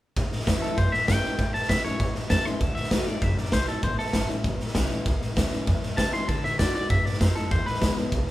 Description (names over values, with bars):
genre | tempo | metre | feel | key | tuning
rockabilly | 196 BPM | 4/4 | straight | A mixolydian | A4 = 439 Hz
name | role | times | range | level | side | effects
picked steel-string acoustic guitar | accompaniment | 0.2-8.3 s | E2 to F#4 | -32 LUFS | left 2 dB | none
upright bass | bass | 0.2-8.3 s | F#1 to B2 | -28 LUFS | right 1 dB | none
raw garage drum kit | drums | 0.2-8.3 s | hi-hat, kick drum, snare drum | -26 LUFS | equal | none
twangy electric guitar | melody | 0.6-8.0 s | A4 to C6 | -29 LUFS | left 1 dB | none
room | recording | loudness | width
moderate large studio reverb, RT60 1.4 s | band playing live in one room | -22 LUFS | side -15 dB against mid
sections
0.2-8.3 A section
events
none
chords
0.2 A; 2.6 D; 3.8 A; 6.3 D; 7.5 E7